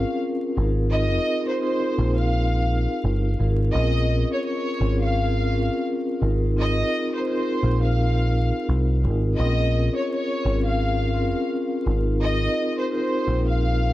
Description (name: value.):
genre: hip hop, boom-bap hip-hop.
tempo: 85 BPM.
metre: 4/4.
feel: swing 61% on 16ths.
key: unclear.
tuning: A4 = 440 Hz.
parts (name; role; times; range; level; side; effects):
clear studio violin section; melody; 0.0-13.9 s; C5 to F5; -28 LUFS; equal; high-pass filter, low-pass filter, tape echo.
vibraphone with soft mallets; accompaniment; 0.0-13.9 s; C4 to Bb4; -25 LUFS; left 1 dB; high-pass filter, low-pass filter.
deep dub picked electric bass; bass; 0.0-13.9 s; G1 to C2; -21 LUFS; equal; none.
room: light reverb.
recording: dark, warm production, vinyl crackle.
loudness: -20 LUFS.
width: side -15 dB against mid.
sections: 0.0-13.9 A section.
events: none.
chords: 0.0 Bbm7; 0.6 Ab6; 3.7 Bbm7; 6.2 Ab6; 9.4 Bbm7; 11.9 Ab6.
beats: 0.21 | 0.92 1.62 2.33 3.04 | 3.74 4.45 5.15 5.86 | 6.57 7.27 7.98 8.68 | 9.39 10.10 10.80 11.51 | 12.21 12.92 13.62.